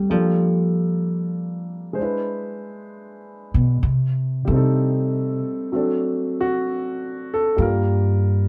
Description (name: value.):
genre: jazz ballad.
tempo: 64 BPM.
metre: 4/4.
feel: swing 69% on 8ths.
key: G minor.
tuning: A4 = 440 Hz.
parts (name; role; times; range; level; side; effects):
warm upright piano; accompaniment; 0.0-8.5 s; F#3 to C5; -26 LUFS; equal; none.
upright bass; bass; 0.0-8.5 s; G2 to G3; -22 LUFS; equal; none.
room: moderate studio reverb, RT60 0.8 s.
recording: dark, warm production.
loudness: -22 LUFS.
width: mono.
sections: 0.0-7.6 A section.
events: upright bass solo 0.0-7.6.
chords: 0.1 Gm9; 2.0 E7b13; 3.8 Am7b5; 5.7 D7; 7.6 Gm7.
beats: | 0.10 1.03 1.97 2.90 | 3.83 4.77 5.71 6.65 | 7.59.